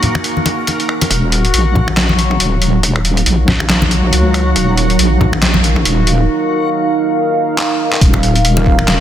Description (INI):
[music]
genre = deep dubstep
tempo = 139 BPM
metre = 4/4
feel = swing 58% on 16ths, half-time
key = Eb minor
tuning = A4 = 440 Hz
[part]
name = dark analog pad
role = sustained chords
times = 0.0-9.0 s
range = Eb4 to Ab5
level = -19 LUFS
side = right 2 dB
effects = chorus
[part]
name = trip hop sampler-style drum kit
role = drums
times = 0.0-9.0 s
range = finger snaps, handclaps, hi-hat, snare drum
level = -16 LUFS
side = equal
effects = overdrive, soft clipping on snare
[part]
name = congas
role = percussion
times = 0.0-9.0 s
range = none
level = -19 LUFS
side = left 2 dB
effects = none
[part]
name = backwards swelling texture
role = texture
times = 0.0-6.3 s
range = Gb3 to Gb4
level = -19 LUFS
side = left 1 dB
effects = built-in reverb
[part]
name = wobble bass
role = bass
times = 1.1-9.0 s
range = Eb1 to Db2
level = -14 LUFS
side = equal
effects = chorus
[part]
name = electronic kick drum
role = drums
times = 1.1-8.8 s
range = none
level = -15 LUFS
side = equal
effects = high-pass filter on kick
[sound]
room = light reverb, digital ambience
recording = dense, heavily limited modern master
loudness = -11 LUFS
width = side -10 dB against mid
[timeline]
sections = 0.0-1.1 A section; 1.1-8.0 B section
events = build-up 1.1-8.0; filter sweep on analog synth pad 1.1-8.0; break 6.3-8.0; drum fill 7.6-8.0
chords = 0.0 Ebm; 8.0 Eb5